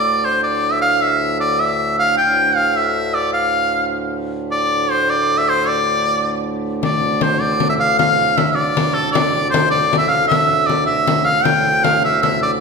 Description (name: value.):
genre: medieval dance.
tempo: 103 BPM (dotted quarters).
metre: 6/8.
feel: straight.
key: D minor.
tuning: A4 = 440 Hz.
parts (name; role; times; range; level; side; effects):
edgy shawm; melody; 0.0-12.5 s; A4 to G5; -16 LUFS; equal; none.
pedal harmonium; drone; 0.0-12.6 s; D2 to A2; -23 LUFS; right 1 dB; none.
frame drum; percussion; 6.8-12.4 s; none; -20 LUFS; left 4 dB; none.
room: wet recital hall reverb, RT60 1.6 s.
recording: recorded in a church or concert hall.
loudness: -14 LUFS.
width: side -4 dB against mid.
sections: 0.0-6.8 A section; 6.8-12.6 A section.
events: none.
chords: none.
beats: 0.44 | 1.02 1.60 | 2.18 2.76 | 3.34 3.92 | 4.51 5.09 | 5.67 6.25 | 6.83 7.41 | 7.99 8.57 | 9.15 9.73 | 10.30 10.88 | 11.46 12.04.